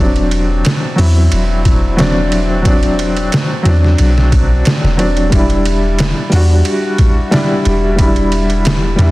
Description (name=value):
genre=trip hop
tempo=90 BPM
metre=4/4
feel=straight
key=unclear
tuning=A4 = 439 Hz
part: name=warm upright piano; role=accompaniment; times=0.0-9.1 s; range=F#3 to F#4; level=-15 LUFS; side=left 1 dB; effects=tremolo, low-pass filter, tape echo
part: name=soft 808-style bass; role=bass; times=0.0-9.1 s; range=E1 to E2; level=-13 LUFS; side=equal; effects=none
part: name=trip hop sampler-style drum kit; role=drums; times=0.2-9.1 s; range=hi-hat, kick drum, ride cymbal, snare drum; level=-15 LUFS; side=equal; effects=studio reverb
room=light reverb, digital ambience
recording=dense, heavily limited modern master, vinyl crackle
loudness=-10 LUFS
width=side -19 dB against mid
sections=0.0-9.1 A section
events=none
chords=0.0 D7/E; 5.3 Em7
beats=0.65 1.32 1.99 | 2.65 3.32 3.98 4.65 | 5.32 5.99 6.65 7.32 | 7.99 8.65